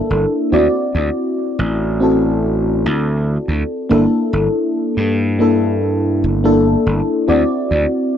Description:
vaporwave; 71 BPM; 4/4; straight; G dorian; A4 = 441 Hz
mellow FM electric piano; accompaniment; 0.0-8.2 s; Bb3 to D5; -15 LUFS; left 1 dB; lush chorus, cassette tape, analog delay
gritty slap bass; bass; 0.1-7.8 s; G1 to G2; -18 LUFS; right 1 dB; overdrive, tube saturation
moderate recital hall reverb, RT60 1.5 s, digital ambience; dark, warm production; -14 LUFS; side -9 dB against mid
0.0-8.2 A section
0.0 Gm69; 0.5 D9; 3.9 Gm69; 7.3 D9

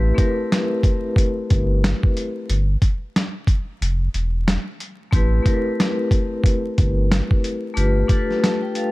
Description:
hip hop, boom-bap hip-hop; 91 BPM; 4/4; swing 61% on 16ths; A minor; A4 = 439 Hz
vibraphone with medium hard mallets; accompaniment; 0.0-8.9 s; A3 to A5; -22 LUFS; left 2 dB; cassette tape, high-pass filter, low-pass filter
warm sub bass; bass; 0.0-8.0 s; E1 to A1; -19 LUFS; equal
dusty soul sampler-style drum kit; drums; 0.2-8.9 s; hi-hat, kick drum, snare drum; -19 LUFS; equal; overdrive
little or no reverb; dark, warm production, vinyl crackle; -18 LUFS; side -19 dB against mid
0.0-8.9 A section
break 2.5-5.1
0.0 Am9; 2.5 N.C.; 5.1 Am9; 7.8 G9

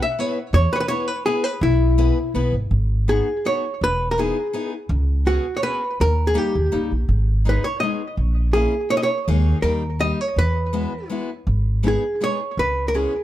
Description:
musette waltz; 165 BPM; 3/4; straight; G# minor; A4 = 440 Hz
archtop guitar, miked and amplified; melody; 0.0-13.2 s; E4 to E5; -22 LUFS; equal; tape echo
picked steel-string acoustic guitar; accompaniment; 0.2-13.1 s; G3 to B4; -27 LUFS; left 4 dB
upright bass; bass; 0.5-13.0 s; E1 to E2; -19 LUFS; equal
light reverb; -18 LUFS; side -13 dB against mid
0.0-2.7 A section; 2.7-13.2 B section
0.0 E; 2.7 G#m7; 3.8 Emaj7; 4.9 C#7sus4; 6.0 D#; 7.1 G#m; 8.2 A#m7b5; 9.3 D#sus4; 9.6 D#; 10.4 Eadd9; 11.5 G#m; 12.6 C#m7

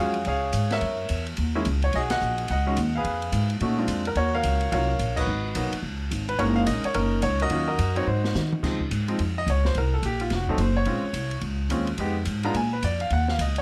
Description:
jazz piano trio; 215 BPM; 4/4; swing 62% on 8ths; Db major; A4 = 440 Hz
clear baby grand piano; melody; 0.0-13.6 s; F3 to Bb5; -29 LUFS; equal
upright bass; bass; 0.0-13.6 s; F1 to Eb3; -28 LUFS; equal
open jazz drum kit; drums; 0.1-13.6 s; crash cymbal, hi-hat, kick drum, ride cymbal, snare drum, toms; -36 LUFS; equal
light reverb; -25 LUFS; mono
0.0-8.6 A section; 8.6-13.6 B section
band accent 2.1, 5.1; drum fill 8.1-8.6; grand piano solo 8.6-13.6
0.0 Ebm11 (rootless); 0.8 Gb7; 1.9 Cb6; 3.0 Fdim; 3.6 Bb7; 4.2 Ebm7; 5.3 Abm7; 5.8 Db5; 6.4 Gb6; 7.5 Ebm7; 8.1 Ab7; 8.6 Dbmaj7; 9.7 Gmadd11; 10.3 F(b9); 10.9 Bbm9; 12.0 Fm7b5; 12.5 Bb5; 13.1 Ebm7

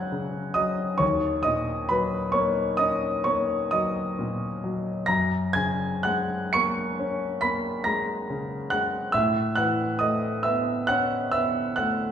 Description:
classical, impressionist solo piano; 40-47 BPM (dotted quarters); 9/8; rubato; F# major; A4 = 440 Hz
warm concert grand piano; solo; 0.0-12.1 s; D#2 to C#7; -23 LUFS; equal
wet recital hall reverb, RT60 1.3 s; recorded in a church or concert hall; -23 LUFS; side -8 dB against mid
0.0-12.1 A section
0.0 F#maj9; 1.0 D#m7; 5.1 F#add9; 9.1 A69

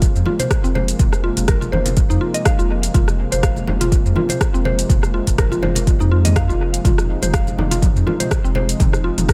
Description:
afro house; 123 BPM; 4/4; swing 55% on 16ths; F minor; A4 = 440 Hz
warm analog pad; sustained chords; 0.0-9.3 s; C3 to Eb4; -28 LUFS; equal; chorus, sidechain pumping
warm sub bass; bass; 0.0-9.3 s; F1 to F2; -23 LUFS; equal; sidechain pumping
deep house drum kit; drums; 0.0-9.3 s; hi-hat, rim click, shaker, toms; -27 LUFS; equal; overdrive, dub echo
electronic kick drum; drums; 0.0-9.3 s; -20 LUFS; equal
mallet-like synth pluck; arpeggios; 0.3-9.3 s; C4 to F5; -26 LUFS; equal; chorus, sidechain pumping, tape echo
congas; percussion; 0.3-9.3 s; -28 LUFS; equal; dub echo
light reverb; echo-heavy mix; -17 LUFS; mono
0.0-9.3 A section
0.0 Fm7

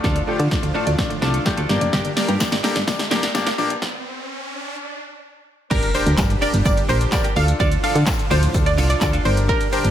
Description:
dance-pop; 127 BPM; 4/4; straight; G minor; A4 = 442 Hz
clear concert grand piano; accompaniment; 0.0-9.8 s; A3 to D5; -26 LUFS; left 5 dB; sidechain pumping
supersaw pad; sustained chords; 0.0-9.9 s; A2 to G4; -30 LUFS; right 1 dB; sidechain pumping
mallet-like synth pluck; arpeggios; 0.0-3.8 s; D3 to Bb5; -31 LUFS; right 1 dB; chorus, phaser, sidechain pumping, ping-pong delay
twelve-string electric guitar; riff; 0.0-9.9 s; D4 to Bb4; -28 LUFS; right 3 dB; wide subtle chorus
solid FM bass; bass; 0.0-9.9 s; F1 to D3; -20 LUFS; equal; sidechain pumping
punchy analog drum machine; drums; 0.0-9.9 s; crash cymbal, handclaps, hi-hat, kick drum, shaker, snare drum; -22 LUFS; equal
riser and impact; sound effects; 1.9-7.6 s; -33 LUFS; right 1 dB
tambourine; percussion; 1.9-9.8 s; -38 LUFS; left 9 dB
glassy wavetable pluck; melody; 5.7-9.9 s; Bb4 to F5; -23 LUFS; right 1 dB; chorus, ping-pong delay
digital ambience; high-pass filter; -17 LUFS; side -10 dB against mid
0.0-5.7 A section; 5.7-9.9 B section
build-up 0.0-5.7; drum fill 0.0-3.8; filter sweep 0.0-5.7; riser 1.9-5.7; stop 3.8-5.7; drop 5.7-9.9; impact 5.7-7.6
0.0 Dm; 1.7 Gm; 3.8 N.C.; 5.7 Gm; 7.4 Dm; 9.3 Gm

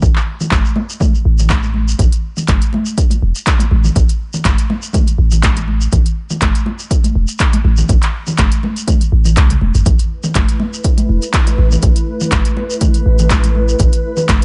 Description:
afro house; 122 BPM; 4/4; swing 54% on 16ths; A4 = 440 Hz
warm 808-style bass; bass; 0.0-14.4 s; E1 to C2; -16 LUFS; equal; tube saturation, sidechain pumping
electronic kick drum; drums; 0.0-14.4 s; -16 LUFS; equal
congas; percussion; 0.0-14.4 s; -24 LUFS; equal
shekere; percussion; 0.0-14.4 s; -30 LUFS; equal
deep house drum kit; drums; 0.2-14.4 s; handclaps, hi-hat, toms; -23 LUFS; equal
ethereal airy pad; sustained chords; 10.6-14.4 s; A3 to B4; -24 LUFS; equal; ensemble chorus, built-in reverb, sidechain pumping
digital ambience; nothing above 10.6 kHz; -14 LUFS; mono
0.0-14.4 A section
drum fill 9.4-9.9
0.0 A5

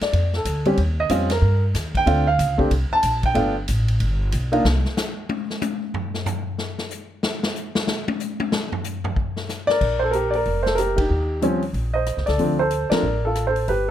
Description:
jazz piano trio; 186 BPM; 4/4; swing 63% on 8ths; Bb major; A4 = 440 Hz
warm baby grand piano; melody; 0.0-4.6, 9.7-13.9 s; F3 to A5; -20 LUFS; right 1 dB
upright bass; bass; 0.0-4.8, 9.8-13.9 s; F1 to G2; -22 LUFS; equal
swinging big-band drum kit; drums; 0.0-13.8 s; crash cymbal, hi-hat, kick drum, ride cymbal, rim click, snare drum, toms; -26 LUFS; left 2 dB
light reverb; close, detailed microphones; -19 LUFS; side -11 dB against mid
0.0-9.8 A section; 9.8-13.9 B section
grand piano solo 0.0-9.8; drum solo 4.6-9.8; band accent 10.9, 12.9
0.0 Bb6 (rootless); 0.8 Ebadd9; 2.1 Dm7; 3.4 G7; 4.6 N.C.; 9.8 Bb6; 11.1 Eb6; 12.4 Dm7

